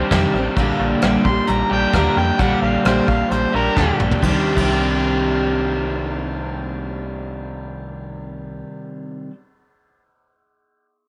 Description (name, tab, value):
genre	folk rock and heartland rock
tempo	131 BPM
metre	4/4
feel	straight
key	C minor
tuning	A4 = 438 Hz
part	overdriven harmonica	second line	0.0-4.0 s	Bb4 to C6	-24 LUFS	equal	none
part	picked steel-string acoustic guitar	accompaniment	0.0-9.4 s	Bb2 to G4	-24 LUFS	equal	none
part	crunchy overdriven guitar	riff	0.0-9.3 s	Bb2 to G4	-26 LUFS	equal	none
part	metallic FM bass	bass	0.0-8.6 s	A1 to F2	-27 LUFS	equal	none
part	soft brush drum kit	drums	0.1-4.7 s	hi-hat, kick drum, ride cymbal, rim click, snare drum, toms	-26 LUFS	equal	none
room	light reverb, studio reverb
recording	none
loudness	-19 LUFS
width	mono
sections	0.0-4.2 A section; 4.2-7.9 B section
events	harmonica solo 0.0-4.2; drum fill 3.8-4.2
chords	0.0 Cmadd9; 0.6 Gm/Bb; 4.2 Cmadd9